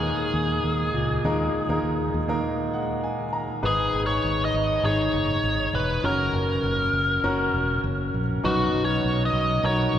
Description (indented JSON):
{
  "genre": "piano-driven pop",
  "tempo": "100 BPM",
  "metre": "4/4",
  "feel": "straight",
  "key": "G# minor",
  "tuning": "A4 = 440 Hz",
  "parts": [
    { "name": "biting lead guitar", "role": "melody", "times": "0.0-10.0 s", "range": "F#4 to D#5", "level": "-26 LUFS", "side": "equal", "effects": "overdrive" },
    { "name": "clear grand piano", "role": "accompaniment", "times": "0.0-10.0 s", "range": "G#2 to A#5", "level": "-26 LUFS", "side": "left 1 dB", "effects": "none" },
    { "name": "fingered electric bass", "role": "bass", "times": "0.0-10.0 s", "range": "E1 to D#2", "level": "-27 LUFS", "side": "right 1 dB", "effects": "none" }
  ],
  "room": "wet cathedral reverb, RT60 6.3 s",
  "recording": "recorded in a church or concert hall, nothing above 10.9 kHz",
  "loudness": "-22 LUFS",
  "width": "side -10 dB against mid",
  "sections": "0.0-3.6 A section; 3.6-10.0 B section",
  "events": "break 2.4-3.6; grand piano fill 2.4-3.6",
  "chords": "0.0 D#sus4; 3.6 G#m; 6.0 F#; 8.4 B"
}